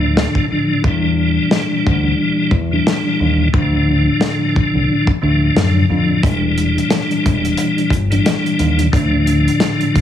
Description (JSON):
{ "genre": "hip hop, boom-bap hip-hop", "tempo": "89 BPM", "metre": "4/4", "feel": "swing 58% on 16ths", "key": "D minor", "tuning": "A4 = 442 Hz", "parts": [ { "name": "tonewheel organ", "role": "accompaniment", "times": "0.0-10.0 s", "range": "A2 to D4", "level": "-16 LUFS", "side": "left 1 dB", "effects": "chorus vibrato, fast rotary speaker, cassette tape, high-pass filter, low-pass filter" }, { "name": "deep dub fingered electric bass", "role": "bass", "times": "0.0-9.5 s", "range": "E1 to F#2", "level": "-17 LUFS", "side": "equal", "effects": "none" }, { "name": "warm soul drum kit", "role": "drums", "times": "0.2-10.0 s", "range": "hi-hat, kick drum, snare drum", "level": "-18 LUFS", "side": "left 1 dB", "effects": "none" } ], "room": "little or no reverb", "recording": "heavily compressed radio sound, multiband compression, small room reverb", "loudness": "-13 LUFS", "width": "side -10 dB against mid", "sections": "0.0-10.0 A section", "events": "break 0.0-6.2", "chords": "0.0 Dm; 0.8 Em7b5; 3.5 Dm; 6.2 Em7b5; 8.9 Dm", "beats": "0.17 | 0.84 1.51 2.19 2.86 | 3.54 4.21 4.89 5.56 | 6.23 6.91 7.58 8.26 | 8.93 9.61" }